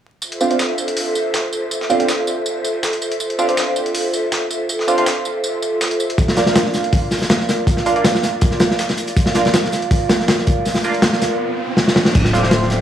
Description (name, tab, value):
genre	drum and bass, jungle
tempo	161 BPM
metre	4/4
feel	swing 54% on 16ths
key	D minor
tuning	A4 = 439 Hz
part	airy breathy pad	sustained chords	0.2-12.8 s	F4 to F5	-22 LUFS	right 1 dB	chorus
part	dusty soul sampler-style drum kit	drums	0.2-11.3 s	hi-hat, snare drum, tambourine	-24 LUFS	equal	high-pass filter on perc, high-pass filter on hats, high-pass filter on snare
part	band-passed chord stab	stabs	0.4-12.8 s	Bb3 to F4	-21 LUFS	right 2 dB	chorus, phaser, dub echo
part	crunchy breakbeat drum kit	drums	6.2-12.8 s	crash cymbal, hi-hat, kick drum, snare drum	-15 LUFS	equal	none
part	riser	sound effects	9.8-12.1 s	none	-26 LUFS	right 1 dB	none
part	saturated sub bass	bass	12.2-12.8 s	D1	-18 LUFS	equal	none
room	light reverb, small room ambience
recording	vinyl crackle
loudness	-15 LUFS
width	side -10 dB against mid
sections	0.2-12.1 A section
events	filter sweep on synth stab 0.2-12.1; riser 9.8-12.1; drum fill 11.8-12.1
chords	0.2 Dm7; 6.2 Bb; 12.1 Dm7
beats	| 0.22 0.59 0.97 1.34 | 1.71 2.08 2.46 2.83 | 3.20 3.58 3.95 4.32 | 4.69 5.07 5.44 5.81 | 6.18 6.56 6.93 7.30 | 7.67 8.05 8.42 8.79 | 9.17 9.54 9.91 10.28 | 10.66 11.03 11.40 11.77 | 12.15 12.52